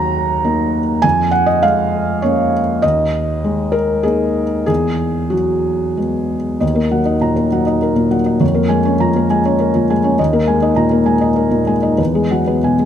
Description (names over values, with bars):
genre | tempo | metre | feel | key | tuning
neoclassical minimalist piano | 92-105 BPM | 3/4 | rubato | Eb minor | A4 = 440 Hz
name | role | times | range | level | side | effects
felt-muted upright piano | solo | 0.0-12.9 s | Eb2 to Bb5 | -13 LUFS | equal | none
room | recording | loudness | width
moderate concert hall reverb, RT60 2.6 s | close, detailed microphones | -13 LUFS | side -9 dB against mid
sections
0.0-6.6 A section; 6.6-12.9 B section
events
none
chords
0.0 Ebm; 1.0 Db6/F; 2.8 Absus2/Eb; 4.7 Eadd9; 6.6 Ebm; 8.4 Db6/F; 10.2 Absus2/Eb; 12.0 Eadd9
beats
0.45 | 1.04 1.63 2.23 | 2.83 3.44 4.05 | 4.68 5.34 5.98 | 6.62 7.24 7.84 | 8.43 9.02 9.61 | 10.19 10.77 11.36 | 11.99 12.64